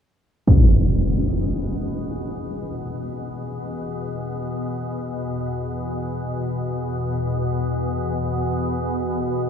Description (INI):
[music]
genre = dark ambient drone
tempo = free time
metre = none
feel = none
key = unclear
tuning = A4 = 441 Hz
[part]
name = organ-like drone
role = drone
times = 1.1-9.5 s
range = E2 to B2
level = -25 LUFS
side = left 2 dB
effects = ensemble chorus, built-in reverb
[part]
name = impact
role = percussion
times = 0.5-0.7 s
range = none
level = -18 LUFS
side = equal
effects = low-pass filter on sfx
[sound]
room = wet huge ambient reverb, RT60 7.0 s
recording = dreamy mix soaked in reverb, small room reverb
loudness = -21 LUFS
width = side -8 dB against mid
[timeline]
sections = 0.5-9.5 A section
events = fade-in on synth drone 0.5-9.5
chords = 0.5 E5